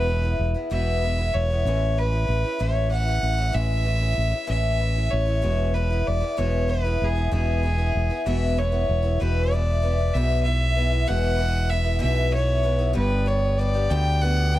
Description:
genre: folk rock and heartland rock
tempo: 64 BPM (dotted quarters)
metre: 6/8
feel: straight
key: unclear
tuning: A4 = 440 Hz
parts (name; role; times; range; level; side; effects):
- clear fiddle; melody; 0.0-14.6 s; G#4 to G5; -27 LUFS; right 1 dB; none
- picked acoustic archtop guitar; accompaniment; 0.0-14.6 s; E2 to G4; -28 LUFS; left 2 dB; none
- fingered electric bass; bass; 0.0-14.6 s; E1 to D2; -22 LUFS; equal; none
room: small room ambience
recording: dark, warm production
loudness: -20 LUFS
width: side -14 dB against mid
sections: 0.0-9.2 A section; 9.2-14.6 B section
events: none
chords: 0.0 E; 1.7 Amaj7; 5.4 E; 13.0 G

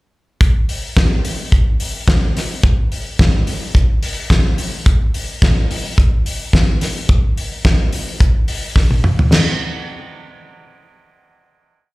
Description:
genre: disco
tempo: 108 BPM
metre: 4/4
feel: straight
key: none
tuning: none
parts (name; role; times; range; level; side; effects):
- damped 70s drum kit; drums; 0.4-9.5 s; crash cymbal, hi-hat, kick drum, snare drum, toms; -15 LUFS; equal; none
room: moderate lush hall reverb, RT60 2.3 s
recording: live gig heard through the venue's PA, club reverb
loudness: -13 LUFS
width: side -22 dB against mid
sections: 0.4-9.3 verse; 9.3-11.5 final hit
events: drum fill 8.8-9.3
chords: none

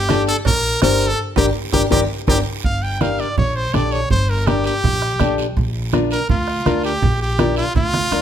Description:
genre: latin, cumbia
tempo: 164 BPM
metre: 4/4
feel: straight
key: G minor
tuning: A4 = 440 Hz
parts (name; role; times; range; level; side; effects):
- brilliant trumpet; melody; 0.0-8.2 s; F4 to G5; -21 LUFS; equal; slapback echo
- upright bass; bass; 0.0-8.2 s; G1 to D2; -22 LUFS; equal; none
- nylon-string guitar; accompaniment; 0.1-8.2 s; D4 to C5; -21 LUFS; left 4 dB; none
- bombo; percussion; 0.1-8.2 s; none; -23 LUFS; right 2 dB; none
- congas; percussion; 0.1-8.0 s; none; -24 LUFS; right 4 dB; none
- cowbell and timbales; percussion; 0.1-2.4 s; none; -30 LUFS; right 6 dB; none
- guiro; percussion; 0.1-8.2 s; none; -34 LUFS; right 8 dB; none
room: light reverb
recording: none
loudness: -16 LUFS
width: side -9 dB against mid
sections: 0.0-2.6 A section; 2.6-8.2 B section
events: drum fill 1.2-2.6, 7.9; band accent 1.2-2.6; trumpet solo 2.6-8.2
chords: 0.0 Gm; 5.6 Bb

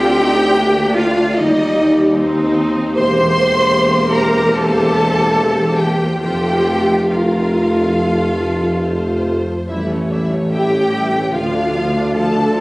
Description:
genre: classical, slow romantic movement for symphony orchestra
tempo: 67-77 BPM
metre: 4/4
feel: rubato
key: unclear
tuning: A4 = 440 Hz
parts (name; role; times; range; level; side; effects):
- warm studio violin section; melody; 0.0-12.6 s; A4 to F5; -29 LUFS; left 2 dB; none
- warm studio violin section; second line; 0.0-12.6 s; Eb5 to C6; -21 LUFS; left 1 dB; none
- warm studio viola section; accompaniment; 0.0-12.6 s; F3 to G4; -21 LUFS; equal; none
- clear tuba; bass; 0.0-12.6 s; E1 to Eb2; -18 LUFS; equal; none
- rich studio double bass section; bass; 0.0-12.6 s; A1 to F2; -24 LUFS; equal; none
- warm studio cello section; bass; 0.0-12.6 s; Eb4 to C5; -18 LUFS; equal; none
room: moderate concert hall reverb, RT60 1.8 s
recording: recorded on a phone in the room, club reverb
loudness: -13 LUFS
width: side -21 dB against mid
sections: 0.0-12.6 A section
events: none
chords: 0.0 Bb/D; 1.4 Cm/Eb; 3.0 C7/E; 6.2 F; 9.7 A7; 11.3 Dm

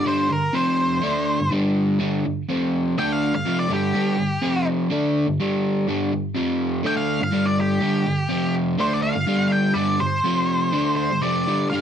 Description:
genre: rock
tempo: 124 BPM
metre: 4/4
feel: straight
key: unclear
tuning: A4 = 441 Hz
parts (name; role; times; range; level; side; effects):
- octave-fuzz lead guitar; melody; 0.0-11.8 s; G4 to G5; -24 LUFS; equal; distortion
- crunchy overdriven guitar; riff; 0.0-11.8 s; F2 to D4; -20 LUFS; equal; none
room: wet small room reverb, RT60 0.5 s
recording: cassette tape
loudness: -19 LUFS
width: side -8 dB against mid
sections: 0.0-11.7 A section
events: lead electric guitar solo 0.0-11.7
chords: 0.0 G5; 0.5 F5; 1.0 G5; 2.5 F5; 3.0 G5; 4.4 F5; 4.9 G5; 6.4 F5; 6.9 G5; 8.3 F5; 8.8 G5; 10.3 F5; 10.7 G5

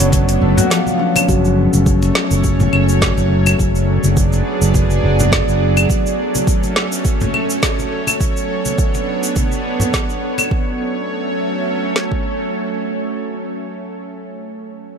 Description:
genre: organic downtempo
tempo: 104 BPM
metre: 4/4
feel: swing 55% on 16ths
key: F# minor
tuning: A4 = 441 Hz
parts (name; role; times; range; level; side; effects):
- mellow bansuri; melody; 0.0-0.7 s; C#5; -28 LUFS; right 1 dB; tape echo, ping-pong delay
- bowed-like drone; sustained chords; 0.0-13.6 s; F#3 to D5; -20 LUFS; right 2 dB; built-in reverb, vintage 12-bit sampler grit, sidechain pumping
- concert harp; arpeggios; 0.0-3.9 s; E#3 to F#4; -20 LUFS; left 3 dB; tape echo
- fretless electric bass; bass; 0.0-5.8 s; F#1; -16 LUFS; right 1 dB; sidechain pumping
- afro-pop drum kit; drums; 0.0-10.5 s; cabasa, claves, hi-hat, snare drum; -20 LUFS; left 1 dB; overdrive
- afro-pop drum kit; drums; 0.1-12.2 s; kick drum, snare drum; -18 LUFS; right 1 dB; overdrive
- congas; percussion; 0.1-10.5 s; none; -24 LUFS; left 1 dB; none
- quartz singing bowl; texture; 1.3-10.5 s; F#3 to F#4; -27 LUFS; left 5 dB; none
room: light reverb, small room ambience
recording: none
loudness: -14 LUFS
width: side -7 dB against mid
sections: 0.0-1.3 A section; 1.3-10.5 B section; 10.5-12.8 C section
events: none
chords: 0.0 Bm9/F#; 1.3 F#m; 3.6 G#m7b5/F#; 5.9 F#m; 8.2 Bm9/F#; 10.5 F#m

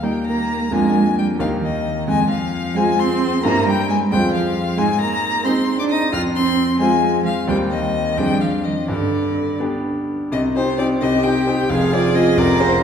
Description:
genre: quick classical-period movement for piano trio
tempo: 88 BPM (dotted quarters)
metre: 6/8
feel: rubato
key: C minor from 4.8 s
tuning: A4 = 440 Hz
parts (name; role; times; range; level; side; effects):
- rich violin; melody; 0.0-12.8 s; C5 to F6; -23 LUFS; left 6 dB; none
- rich cello; second line; 0.0-12.8 s; D3 to Bb4; -21 LUFS; right 4 dB; none
- bright concert grand piano; accompaniment; 0.0-12.8 s; F1 to Ab4; -19 LUFS; left 1 dB; none
room: wet recital hall reverb, RT60 1.6 s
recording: heard from further back in the room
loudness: -16 LUFS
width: side -8 dB against mid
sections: 0.0-10.3 A section; 10.3-12.8 B section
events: none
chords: 0.0 Eb; 0.7 Bb7/F; 1.4 Eb; 2.1 Fm; 3.4 C/G; 4.1 Fm; 4.8 Ab; 6.1 Fm; 7.5 Cm/Eb; 8.2 Dm7b5/F; 8.9 G; 10.3 Cm; 11.7 Fm

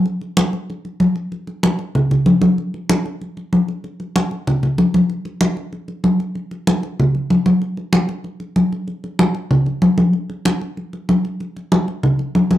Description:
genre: latin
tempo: 190 BPM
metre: 4/4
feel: straight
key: none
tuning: none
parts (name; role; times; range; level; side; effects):
- congas; percussion; 0.1-12.6 s; none; -16 LUFS; equal; none
room: light reverb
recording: minimal, uncompressed stereo recording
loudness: -16 LUFS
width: side -13 dB against mid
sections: 0.0-6.4 A section; 6.4-12.6 B section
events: none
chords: none

